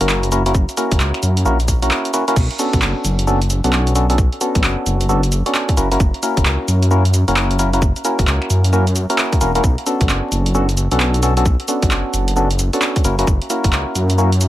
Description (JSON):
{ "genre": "UK garage, two-step garage", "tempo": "132 BPM", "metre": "4/4", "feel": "swing 63% on 16ths", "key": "B minor", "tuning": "A4 = 440 Hz", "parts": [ { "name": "percussive organ stab", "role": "stabs", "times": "0.0-14.3 s", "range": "A#3 to A#4", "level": "-19 LUFS", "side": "equal", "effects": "chorus, digital delay" }, { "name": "dark detuned saw bass", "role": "bass", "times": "0.0-14.5 s", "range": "E1 to F#2", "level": "-17 LUFS", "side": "equal", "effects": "tube saturation" }, { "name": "punchy analog drum machine", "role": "drums", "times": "0.0-14.5 s", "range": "crash cymbal, finger snaps, handclaps, hi-hat, shaker", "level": "-22 LUFS", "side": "right 1 dB", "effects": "none" }, { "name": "electronic kick drum", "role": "drums", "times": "0.5-13.7 s", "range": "none", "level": "-16 LUFS", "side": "equal", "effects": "overdrive" } ], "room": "little or no reverb", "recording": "vinyl crackle", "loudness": "-14 LUFS", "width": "side -14 dB against mid", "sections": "0.0-14.5 A section", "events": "none", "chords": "0.0 F#7; 2.4 Bm9; 5.8 F#7; 9.6 Bm9; 13.0 F#7", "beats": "0.09 | 0.55 1.00 1.45 1.91 | 2.36 2.82 3.27 3.73 | 4.18 4.64 5.09 5.54 | 6.00 6.45 6.91 7.36 | 7.82 8.27 8.73 9.18 | 9.64 10.09 10.54 11.00 | 11.45 11.91 12.36 12.82 | 13.27 13.73 14.18" }